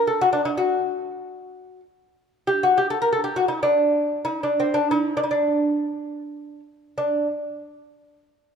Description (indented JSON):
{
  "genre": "Persian modal ensemble",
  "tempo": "free time",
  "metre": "none",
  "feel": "none",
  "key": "D dastgah homayun",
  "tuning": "A4 = 440 Hz",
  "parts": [
    { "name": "lute", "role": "solo", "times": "0.0-7.3 s", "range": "C4 to Bb4", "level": "-20 LUFS", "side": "equal", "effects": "none" }
  ],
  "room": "moderate scoring stage reverb, RT60 1.8 s",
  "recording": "minimal, uncompressed stereo recording",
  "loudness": "-20 LUFS",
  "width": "side -6 dB against mid",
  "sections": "0.0-7.0 A section; 7.0-8.6 B section",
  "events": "none",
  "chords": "none",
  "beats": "free time"
}